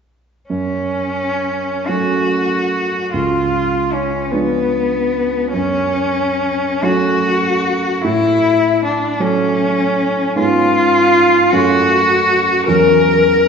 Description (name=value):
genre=classical, romantic duo for cello and grand piano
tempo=41-52 BPM (dotted quarters)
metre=6/8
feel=rubato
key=F# minor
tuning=A4 = 440 Hz
part: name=rich cello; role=melody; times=0.5-13.5 s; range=B3 to A#4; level=-14 LUFS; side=left 2 dB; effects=none
part: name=warm baby grand piano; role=accompaniment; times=0.5-13.5 s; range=C#2 to D4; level=-18 LUFS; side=right 3 dB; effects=none
room=wet scoring stage reverb, RT60 1.9 s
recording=heard from further back in the room, nothing above 7.6 kHz, faint mains hum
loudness=-13 LUFS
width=side -6 dB against mid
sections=0.5-13.5 A section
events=none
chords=0.5 F#m; 3.1 C#7b9; 5.5 F#m; 8.0 F#m/A; 10.4 C#7/G#; 11.5 F#m; 12.7 F#7/E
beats=| 0.50 1.88 | 3.13 4.32 | 5.53 6.82 | 8.04 9.21 | 10.36 11.52 | 12.68